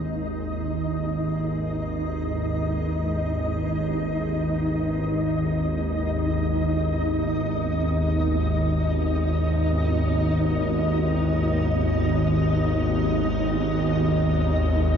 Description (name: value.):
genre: dark ambient drone.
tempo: free time.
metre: none.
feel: none.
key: unclear.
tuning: A4 = 444 Hz.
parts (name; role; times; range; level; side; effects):
granular cloud pad; sustained chords; 0.0-15.0 s; G#3 to D#5; -35 LUFS; equal; built-in reverb.
bowed-like drone; drone; 0.0-15.0 s; G#1 to D#2; -23 LUFS; equal; built-in reverb.
flickering grainy texture; texture; 0.0-15.0 s; D#4 to D#5; -28 LUFS; equal; built-in reverb.
room: wet huge ambient reverb, RT60 8.0 s.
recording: dark, warm production, nothing above 7.5 kHz.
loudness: -22 LUFS.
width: side -7 dB against mid.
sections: 0.0-15.0 A section.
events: fade-in on ambient pad 0.0-15.0.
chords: 0.0 G#m; 5.6 G#m7.